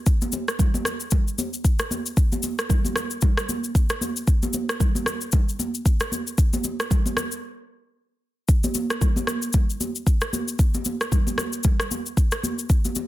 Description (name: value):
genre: amapiano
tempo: 114 BPM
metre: 4/4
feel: swing 58% on 16ths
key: none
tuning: none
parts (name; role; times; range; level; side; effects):
- afro-pop drum kit; drums; 0.1-13.1 s; kick drum, rim click, shaker; -21 LUFS; equal; soft clipping on snare
- congas; percussion; 0.2-13.1 s; none; -29 LUFS; right 1 dB; none
room: little or no reverb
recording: dense, heavily limited modern master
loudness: -21 LUFS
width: side -15 dB against mid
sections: 0.0-13.1 A section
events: break 7.4-8.5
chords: none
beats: | 0.06 0.59 1.12 1.64 | 2.17 2.70 3.22 3.75 | 4.28 4.80 5.33 5.85 | 6.38 6.91 7.43 7.96 | 8.48 9.01 9.54 10.06 | 10.59 11.12 11.64 12.17 | 12.70